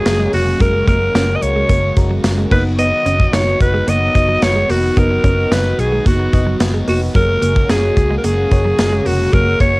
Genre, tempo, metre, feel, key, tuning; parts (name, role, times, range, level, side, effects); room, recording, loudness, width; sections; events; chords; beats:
1980s-style pop; 110 BPM; 4/4; straight; F# major; A4 = 440 Hz
breathy alto saxophone; melody; 0.0-9.8 s; F#4 to D#5; -17 LUFS; equal; cassette tape
FM electric piano; accompaniment; 0.0-9.8 s; G#3 to D#5; -24 LUFS; left 1 dB; chorus, phaser, cassette tape
thick fuzz guitar; accompaniment; 0.0-9.8 s; F#2 to B3; -30 LUFS; equal; distortion, lush chorus, cassette tape
warm analog pad; sustained chords; 0.0-9.8 s; C#3 to F#4; -25 LUFS; equal; chorus, cassette tape
direct-recorded clean electric guitar; riff; 0.1-9.7 s; F#3 to D#4; -24 LUFS; right 2 dB; analog chorus, cassette tape
vintage muted fingered electric bass; bass; 0.1-9.8 s; E#1 to C#2; -18 LUFS; equal
modern studio drum kit; drums; 0.1-9.7 s; crash cymbal, hi-hat, kick drum, snare drum, tambourine; -16 LUFS; equal; cassette tape
light reverb; home recording on cassette; -12 LUFS; side -23 dB against mid
0.0-9.8 A section
0.0 F#add9; 2.5 B; 7.2 F#add9
0.06 | 0.60 1.15 1.70 2.24 | 2.79 3.33 3.88 4.42 | 4.97 5.51 6.06 6.61 | 7.15 7.70 8.24 8.79 | 9.33